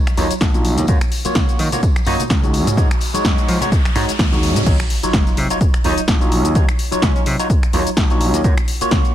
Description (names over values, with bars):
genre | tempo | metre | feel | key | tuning
filtered disco house | 127 BPM | 4/4 | swing 56% on 16ths | Eb minor | A4 = 442 Hz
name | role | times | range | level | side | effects
punchy analog drum machine | drums | 0.1-9.1 s | crash cymbal, finger snaps, hi-hat, shaker, snare drum | -23 LUFS | left 1 dB | sidechain pumping on hats, sidechain pumping on perc, sidechain pumping on cymbals
tambourine and congas | percussion | 0.1-4.6 s | none | -29 LUFS | left 2 dB | sidechain pumping on perc, low-pass filter on perc
overdriven tine electric piano | accompaniment | 0.2-9.1 s | Gb3 to Db5 | -21 LUFS | equal | phaser, sidechain pumping, low-pass filter
gritty slap bass | bass | 0.2-9.0 s | Bb1 to F3 | -21 LUFS | equal | overdrive, sidechain pumping, low-pass filter
electronic kick drum | drums | 0.4-9.0 s | none | -17 LUFS | equal | none
riser and sub drop | sound effects | 1.9-6.6 s | none | -29 LUFS | equal | none
clear horn section | melody | 2.1-2.2, 5.8-7.2 s | Db4 to Eb4 | -28 LUFS | left 1 dB | vintage 12-bit sampler grit, sidechain pumping, low-pass filter
room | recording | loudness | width
little or no reverb | none | -14 LUFS | side -12 dB against mid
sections
0.0-4.7 A section; 4.7-9.1 B section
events
riser 1.9-4.7; drop 4.7-9.1; impact 4.7-6.6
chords
0.0 Ebm9; 0.9 Gbmaj7; 2.5 Ab7sus4; 4.7 Ebm9; 8.4 Gbmaj7